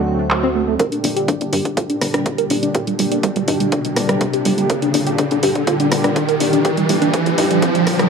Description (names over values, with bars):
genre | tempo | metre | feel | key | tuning
progressive house | 123 BPM | 4/4 | straight | G minor | A4 = 440 Hz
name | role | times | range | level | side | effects
warm analog pad | sustained chords | 0.0-8.1 s | Bb2 to G4 | -21 LUFS | equal | chorus, tremolo, sidechain pumping
tight sequencer bass | bass | 0.0-8.1 s | G1 to G2 | -26 LUFS | equal | sidechain pumping, high-pass filter
tight sequenced synth | arpeggios | 0.2-8.1 s | G3 to Bb4 | -20 LUFS | equal | chorus, sidechain pumping, dub echo
deep house drum kit | drums | 0.3-8.1 s | handclaps, hi-hat, rim click | -23 LUFS | right 1 dB | overdrive, low-pass filter on snare, low-pass filter on hats
electronic kick drum | drums | 0.8-7.7 s | none | -22 LUFS | equal | overdrive, high-pass filter on kick
riser | sound effects | 1.9-8.1 s | none | -21 LUFS | right 2 dB | none
room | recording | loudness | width
moderate lush hall reverb, RT60 1.9 s | high-pass filter | -15 LUFS | side -5 dB against mid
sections
0.8-8.1 A section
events
build-up 0.8-8.1; filter sweep on synth arpeggio sound 0.8-8.1; riser 1.9-8.1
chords
0.0 D7; 0.8 Gm